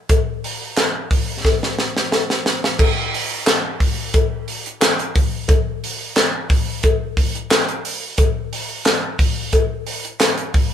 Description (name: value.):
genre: funk.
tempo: 89 BPM.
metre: 4/4.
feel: straight.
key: none.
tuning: none.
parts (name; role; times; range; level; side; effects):
crisp fusion drum kit; drums; 0.1-10.7 s; crash cymbal, handclaps, hi-hat, kick drum, snare drum; -17 LUFS; equal; none.
cowbell; percussion; 0.1-10.4 s; none; -22 LUFS; left 2 dB; none.
room: moderate studio reverb, RT60 0.8 s.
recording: band playing live in one room.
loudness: -17 LUFS.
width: side -9 dB against mid.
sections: 0.0-2.8 A section; 2.8-10.7 B section.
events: drum fill 1.4-2.8.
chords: none.